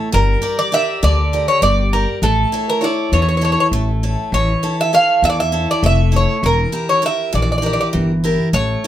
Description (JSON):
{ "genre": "greek folk, Greek bouzouki band", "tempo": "200 BPM (eighths)", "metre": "7/8", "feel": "straight", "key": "unclear", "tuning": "A4 = 440 Hz", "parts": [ { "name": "picked steel-string acoustic guitar", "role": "accompaniment", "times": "0.0-8.9 s", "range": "D3 to D5", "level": "-20 LUFS", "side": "equal", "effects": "none" }, { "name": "Greek bouzouki", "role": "melody", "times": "0.1-8.9 s", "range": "A4 to F5", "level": "-16 LUFS", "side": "right 1 dB", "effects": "none" }, { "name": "upright bass", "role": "bass", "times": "0.1-8.7 s", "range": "E1 to E2", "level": "-17 LUFS", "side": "left 1 dB", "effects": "none" } ], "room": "wet studio reverb, RT60 0.6 s", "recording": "band playing live in one room", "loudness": "-14 LUFS", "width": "side -12 dB against mid", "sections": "0.0-8.9 A section", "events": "none", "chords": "0.1 Gm; 2.2 A; 6.4 Edim" }